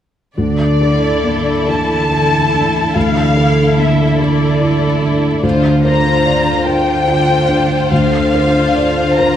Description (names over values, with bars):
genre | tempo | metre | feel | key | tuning
cinematic, emotional film score for orchestra | 48 BPM (dotted quarters) | 6/8 | rubato | D minor | A4 = 440 Hz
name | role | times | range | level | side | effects
warm studio violin section | melody | 0.4-9.4 s | D5 to Bb5 | -18 LUFS | left 2 dB | none
felt-muted upright piano | accompaniment | 0.4-9.4 s | D2 to D5 | -17 LUFS | equal | none
concert harp | arpeggios | 0.4-9.4 s | D3 to C5 | -20 LUFS | left 3 dB | none
rich symphonic cello section | bass | 0.4-9.4 s | D3 | -17 LUFS | right 3 dB | none
warm symphonic violin section | second line | 0.8-9.4 s | E4 to C5 | -18 LUFS | left 1 dB | none
room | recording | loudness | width
wet concert hall reverb, RT60 2.3 s | none | -11 LUFS | side -10 dB against mid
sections
0.4-9.4 A section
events
none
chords
0.4 Dsus2; 5.4 Bbadd9/D